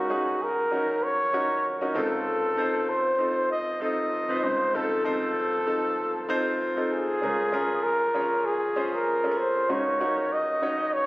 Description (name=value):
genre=pop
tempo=97 BPM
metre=4/4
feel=swing 56% on 16ths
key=unclear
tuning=A4 = 440 Hz
part: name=breathy flugelhorn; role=melody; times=0.0-11.1 s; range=Gb4 to Eb5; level=-26 LUFS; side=equal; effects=none
part: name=bright concert grand piano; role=accompaniment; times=0.0-11.1 s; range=Db2 to Db5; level=-28 LUFS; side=equal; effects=none
room=wet scoring stage reverb, RT60 1.7 s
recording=recorded on a phone in the room, club reverb, compression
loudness=-23 LUFS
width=side -20 dB against mid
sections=0.0-11.1 A section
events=none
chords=0.0 Gb6/Db; 2.0 F7/Db; 7.2 Bbm7/Db; 9.7 Gb6/Db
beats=0.41 1.03 1.65 | 2.26 2.88 3.50 4.12 | 4.74 5.36 5.97 6.59 | 7.21 7.83 8.45 9.06 | 9.68 10.30 10.92